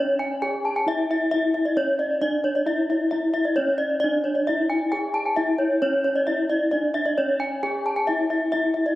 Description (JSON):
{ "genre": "gamelan", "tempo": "133 BPM", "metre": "4/4", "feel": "straight", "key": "unclear", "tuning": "A4 = 440 Hz", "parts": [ { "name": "gamelan-type bronze metallophone", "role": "melody", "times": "0.0-9.0 s", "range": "C#4 to G#4-30c", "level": "-24 LUFS", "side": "left 1 dB", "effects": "none" }, { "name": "gamelan-type bronze metallophone", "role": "arpeggios", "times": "0.0-9.0 s", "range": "C#5 to A5-20c", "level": "-23 LUFS", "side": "equal", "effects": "tape echo" } ], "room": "moderate concert hall reverb, RT60 2.4 s", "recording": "recorded on a phone in the room, club reverb, compression", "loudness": "-21 LUFS", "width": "side -16 dB against mid", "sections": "0.0-9.0 A section", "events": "none", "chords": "none" }